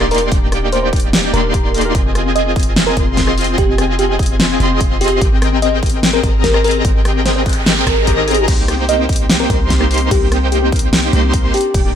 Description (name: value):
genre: future bass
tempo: 147 BPM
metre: 4/4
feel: half-time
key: unclear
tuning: A4 = 440 Hz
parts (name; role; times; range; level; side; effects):
- bell-like FM electric piano; melody; 0.0-11.9 s; G4 to Eb5; -19 LUFS; equal; chorus, phaser, sidechain pumping, ping-pong delay
- Celtic harp; arpeggios; 0.0-12.0 s; C4 to Bb4; -23 LUFS; left 6 dB; sidechain pumping, dub echo
- big bright polysynth; riff; 0.0-12.0 s; Bb3 to C6; -18 LUFS; equal; vintage 12-bit sampler grit, sidechain pumping
- warm 808-style bass; bass; 0.0-12.0 s; Eb1 to C2; -19 LUFS; equal; sidechain pumping
- big-room dance drum kit; drums; 0.0-11.8 s; crash cymbal, hi-hat, rim click, snare drum; -18 LUFS; equal; none
- electronic kick drum; drums; 0.3-11.8 s; none; -16 LUFS; equal; none
- noise sweep; sound effects; 7.1-8.5 s; none; -24 LUFS; right 4 dB; none
room: little or no reverb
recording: none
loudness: -12 LUFS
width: side -9 dB against mid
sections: 0.0-12.0 A section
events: noise sweep 7.1-8.5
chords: 0.0 Ebmaj7; 1.9 Fm7; 5.2 Abmaj9; 8.5 Cm7